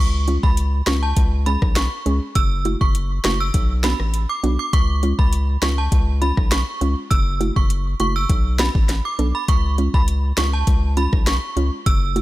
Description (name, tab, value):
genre	dancehall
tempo	101 BPM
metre	4/4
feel	straight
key	unclear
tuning	A4 = 441 Hz
part	synth chime	melody	0.0-12.1 s	A5 to E6	-25 LUFS	right 2 dB	ensemble chorus, digital delay
part	round analog bass	bass	0.0-12.2 s	F#1 to C#2	-20 LUFS	equal	none
part	soft round pluck	accompaniment	0.3-12.2 s	G#3 to A4	-25 LUFS	right 2 dB	chorus
part	afro-pop drum kit	drums	0.3-12.2 s	hi-hat, kick drum, rim click, snare drum	-19 LUFS	equal	none
room	little or no reverb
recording	none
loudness	-17 LUFS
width	side -17 dB against mid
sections	0.0-12.2 A section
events	none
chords	0.0 C#; 2.4 F#m7; 3.5 Bm; 4.7 C#; 7.1 F#m7; 8.3 Bm; 9.5 C#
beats	0.57 1.17 1.76 | 2.36 2.95 3.54 4.14 | 4.73 5.33 5.92 6.51 | 7.11 7.70 8.30 8.89 | 9.48 10.08 10.67 11.27 | 11.86